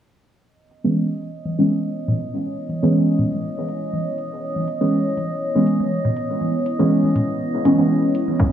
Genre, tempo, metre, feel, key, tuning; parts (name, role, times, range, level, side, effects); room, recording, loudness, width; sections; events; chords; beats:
dub techno; 121 BPM; 4/4; swing 53% on 16ths; C# minor; A4 = 439 Hz
deep dark ambient pad; sustained chords; 1.5-8.5 s; B3 to C#5; -27 LUFS; equal; chorus, built-in reverb, sidechain pumping
drifting glass-harmonics texture; texture; 1.0-8.5 s; G#4 to D#5; -31 LUFS; right 2 dB; chorus, built-in reverb, sidechain pumping
electronic hi-hat; drums; 0.7-8.3 s; -60 LUFS; equal; dub echo
deep mellow chord stab; stabs; 0.8-8.1 s; E3 to C#4; -19 LUFS; right 1 dB; chorus, phaser, sidechain pumping, dub echo
electronic toms; percussion; 0.8-8.4 s; -26 LUFS; equal; sidechain pumping on toms
electronic kick drum; drums; 8.4-8.5 s; -16 LUFS; equal
wet digital room reverb, RT60 1.0 s; low-pass filter, small room ambience; -18 LUFS; side -10 dB against mid
0.5-8.5 A section
filter sweep on synth stab 0.5-8.5; filter sweep 0.5-8.5
0.5 C#m7
| 0.46 0.96 1.45 1.95 | 2.45 2.94 3.44 3.93 | 4.43 4.92 5.42 5.92 | 6.41 6.91 7.40 7.90 | 8.40